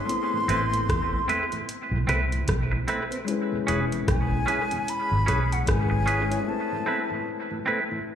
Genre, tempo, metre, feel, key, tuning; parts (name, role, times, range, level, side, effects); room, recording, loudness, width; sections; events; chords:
lovers rock reggae; 75 BPM; 4/4; swing 59% on 16ths; A4 = 439 Hz
breathy concert flute; melody; 0.0-7.3 s; F#5 to C6; -29 LUFS; equal; tape echo, slapback echo
warm concert grand piano; accompaniment; 0.0-8.2 s; G#3 to B4; -32 LUFS; left 6 dB; tape echo, slapback echo
booming analog drum machine; drums; 0.1-6.5 s; hi-hat, kick drum, rim click; -30 LUFS; equal; tape echo
mellow tonewheel organ; accompaniment; 0.3-8.0 s; E2 to E4; -34 LUFS; right 2 dB; slow rotary speaker, tape echo, slapback echo
twangy electric guitar; stabs; 0.5-7.8 s; C4 to B4; -29 LUFS; right 2 dB; spring reverb, tape echo, slapback echo
vintage muted fingered electric bass; bass; 0.5-6.4 s; E1 to E2; -26 LUFS; equal
light reverb, digital ambience; live gig heard through the venue's PA, club reverb; -23 LUFS; side -9 dB against mid
0.0-8.2 A section
break 6.5-8.2
0.1 Amadd9; 3.3 E6; 6.5 Amadd9